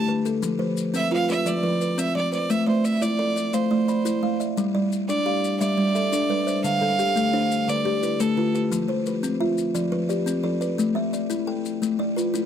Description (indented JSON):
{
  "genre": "southern african traditional, mbira-style interlocking cycle",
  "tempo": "116 BPM (dotted quarters)",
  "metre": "12/8",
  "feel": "straight",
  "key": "G mixolydian",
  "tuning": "A4 = 441 Hz",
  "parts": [
    { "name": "bright fiddle", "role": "melody", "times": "0.0-8.6 s", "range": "A4 to F5", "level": "-26 LUFS", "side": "right 4 dB", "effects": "none" },
    { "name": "buzzing kalimba", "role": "arpeggios", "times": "0.0-12.5 s", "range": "D3 to B5", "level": "-24 LUFS", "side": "left 4 dB", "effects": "none" },
    { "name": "buzzing kalimba", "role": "arpeggios", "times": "0.0-12.5 s", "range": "D3 to F5", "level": "-27 LUFS", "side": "right 6 dB", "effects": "none" },
    { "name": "maracas", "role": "percussion", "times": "0.3-12.5 s", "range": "none", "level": "-36 LUFS", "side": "left 11 dB", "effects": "none" }
  ],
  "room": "light reverb",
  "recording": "dry, close 1970s-style studio recording",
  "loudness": "-21 LUFS",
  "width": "side -9 dB against mid",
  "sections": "0.0-4.6 A section; 4.6-12.5 B section",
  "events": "none",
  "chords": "0.4 F5; 2.5 Am; 4.6 G; 6.6 Dm; 8.7 F; 10.8 A5"
}